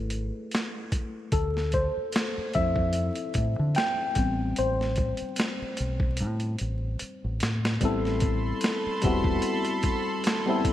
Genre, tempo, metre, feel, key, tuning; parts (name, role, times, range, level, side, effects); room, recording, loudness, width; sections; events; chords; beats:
R&B, neo-soul; 74 BPM; 4/4; swing 55% on 16ths; A4 = 440 Hz
tine electric piano; accompaniment; 0.0-10.7 s; F3 to G5; -29 LUFS; left 2 dB; wide subtle chorus
deep dub fingered electric bass; bass; 0.0-9.4 s; E1 to D3; -29 LUFS; equal
boom bap sampler-style drum kit; drums; 0.1-10.7 s; hi-hat, kick drum, snare drum; -28 LUFS; equal; gated reverb
chorused pulse-width pad; sustained chords; 7.8-10.7 s; A4 to C6; -31 LUFS; right 2 dB; tremolo
light reverb, digital ambience; bright 1980s-style digital production, vinyl crackle, lossy compression artefacts; -25 LUFS; side -12 dB against mid
0.0-7.8 A section; 7.8-10.7 B section
tine electric piano solo 0.0-7.8; drum fill 6.2-7.8
0.0 F#m9 (rootless); 1.3 Dm9; 4.2 Am9
0.52 | 1.33 2.14 2.95 3.76 | 4.57 5.38 6.19 7.00 | 7.81 8.62 9.43 10.24